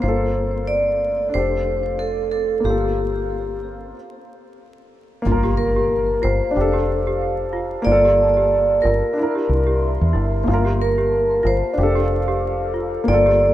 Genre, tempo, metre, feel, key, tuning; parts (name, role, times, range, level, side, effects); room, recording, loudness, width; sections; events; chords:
trip hop; 92 BPM; 4/4; swing 58% on 16ths; G dorian; A4 = 441 Hz
vibraphone with medium hard mallets; melody; 0.0-13.5 s; G4 to D5; -20 LUFS; right 1 dB; tape echo
dark upright piano; accompaniment; 0.0-13.5 s; Bb3 to Bb4; -24 LUFS; left 2 dB; harmonic tremolo, tape echo
deep dark ambient pad; sustained chords; 0.0-13.5 s; A4 to D6; -31 LUFS; right 1 dB; chorus, built-in reverb, vintage 12-bit sampler grit
deep dub fingered electric bass; bass; 0.0-13.5 s; F1 to E2; -22 LUFS; equal
flickering grainy texture; texture; 0.0-3.9 s; C4 to C5; -41 LUFS; right 1 dB; built-in reverb
impact; sound effects; 5.3-7.9 s; -30 LUFS; equal
worn celesta; arpeggios; 5.4-13.5 s; E4 to G4; -29 LUFS; right 2 dB; vintage 12-bit sampler grit, tape echo
light reverb, small room ambience; rough home demo mix, vinyl crackle; -17 LUFS; side -13 dB against mid
0.0-5.2 A section; 5.2-13.5 B section
break 3.9-5.2; impact 5.2-7.9
0.0 Gm9; 1.3 F6; 2.6 Gm9; 3.9 N.C.; 5.2 Gm9; 6.6 F6; 7.9 Gm9; 9.2 C7; 10.5 Gm9; 11.8 F6